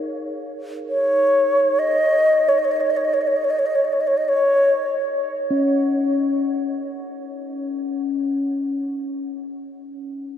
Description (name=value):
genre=world meditative, free-time meditation music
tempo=free time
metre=none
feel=none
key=unclear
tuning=A4 = 440 Hz
part: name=bronze singing bowl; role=texture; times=0.0-8.6 s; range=Db4 to Bb4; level=-25 LUFS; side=left 3 dB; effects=none
part: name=bright xiao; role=melody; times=0.9-5.0 s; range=Db5 to Eb5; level=-18 LUFS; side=equal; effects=diffuse ambient delay
room=wet huge ambient reverb, RT60 8.7 s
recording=dreamy mix soaked in reverb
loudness=-18 LUFS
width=side -9 dB against mid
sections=0.0-5.5 A section; 5.5-9.2 B section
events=none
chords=none